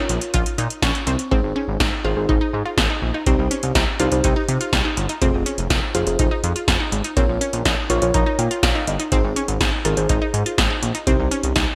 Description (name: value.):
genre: synth-pop.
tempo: 123 BPM.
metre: 4/4.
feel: straight.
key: Ab major.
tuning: A4 = 441 Hz.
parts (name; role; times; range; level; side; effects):
muted felt-like synth keys; accompaniment; 0.0-11.6 s; Eb4 to Db6; -27 LUFS; equal; chorus.
unison pluck; arpeggios; 0.0-11.7 s; C4 to F4; -28 LUFS; equal; delay.
chorused synth bass; bass; 0.1-11.7 s; F1 to C3; -25 LUFS; equal; none.
electro analog drum machine; drums; 0.1-11.7 s; hi-hat, kick drum, snare drum; -23 LUFS; equal; gated reverb.
room: moderate plate reverb, RT60 2.4 s.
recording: bright 1980s-style digital production.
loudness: -20 LUFS.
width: mono.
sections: 0.0-1.3 A section; 1.3-11.8 B section.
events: synth keys fill 0.6-1.3, 7.7-9.1.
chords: 0.0 Bbm; 1.3 Ab; 3.3 Cm; 5.2 Fm; 7.2 Bbm; 9.1 Ab; 11.1 Cm.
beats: 0.34 0.83 | 1.31 1.80 2.29 2.78 | 3.27 3.75 4.24 4.73 | 5.22 5.70 6.19 6.68 | 7.17 7.66 8.14 8.63 | 9.12 9.61 10.09 10.58 | 11.07 11.56.